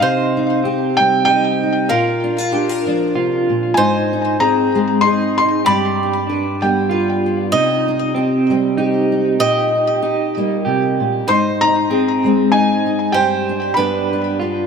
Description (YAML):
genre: acoustic folk duo or small band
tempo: 96 BPM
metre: 3/4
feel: swing 55% on 8ths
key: C minor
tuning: A4 = 439 Hz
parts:
  - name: felt-muted upright piano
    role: melody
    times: 0.0-7.2, 11.3-14.7 s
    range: F5 to C6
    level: -18 LUFS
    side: equal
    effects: ping-pong delay
  - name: bowl-back mandolin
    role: second line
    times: 0.0-14.7 s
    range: Bb4 to Eb5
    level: -22 LUFS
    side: right 1 dB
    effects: ping-pong delay
  - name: fingerpicked steel-string acoustic guitar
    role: accompaniment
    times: 0.0-14.7 s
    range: G2 to B4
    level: -19 LUFS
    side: left 1 dB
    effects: lush chorus
  - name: electric guitar through a small old amp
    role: arpeggios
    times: 0.0-14.7 s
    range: C4 to G4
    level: -19 LUFS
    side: right 3 dB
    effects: tremolo, ping-pong delay
room: wet plate reverb, RT60 3.3 s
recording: dreamy mix soaked in reverb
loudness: -14 LUFS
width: side -6 dB against mid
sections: 0.0-14.7 A section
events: none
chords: 0.0 Cm; 1.9 Bb; 3.8 Ab; 5.7 G; 7.5 Cm; 9.4 Eb/Bb; 11.3 Ab; 13.1 Gsus4; 13.8 G